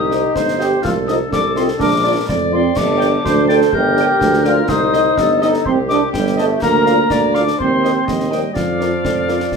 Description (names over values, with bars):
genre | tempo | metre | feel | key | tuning
military-style march for wind band | 124 BPM | 2/4 | straight | Bb major | A4 = 440 Hz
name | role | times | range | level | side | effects
piccolo | second line | 0.0-9.6 s | F5 to A6 | -22 LUFS | left 6 dB | none
warm woodwind section | second line | 0.0-9.6 s | G4 to Eb5 | -22 LUFS | equal | none
dark trombone section | sustained chords | 0.0-9.6 s | F3 to A4 | -18 LUFS | right 2 dB | none
warm tuba | bass | 0.0-9.6 s | G1 to F2 | -19 LUFS | right 1 dB | none
warm trumpet section | melody | 0.1-9.4 s | D5 to G5 | -28 LUFS | right 2 dB | none
mellow French horn section | accompaniment | 0.1-9.4 s | F4 to Eb5 | -24 LUFS | left 3 dB | none
concert snare drum, concert bass drum and clash cymbals | drums | 0.1-9.6 s | none | -25 LUFS | equal | none
room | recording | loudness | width
moderate large studio reverb, RT60 0.9 s | minimal, uncompressed stereo recording | -13 LUFS | side -5 dB against mid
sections
0.0-9.6 A section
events
none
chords
0.0 Cm; 0.8 F7/C; 1.8 Bb; 2.8 Gm; 4.7 Cm; 6.6 Bb/D; 7.6 Cm7/Eb; 8.6 Bb/F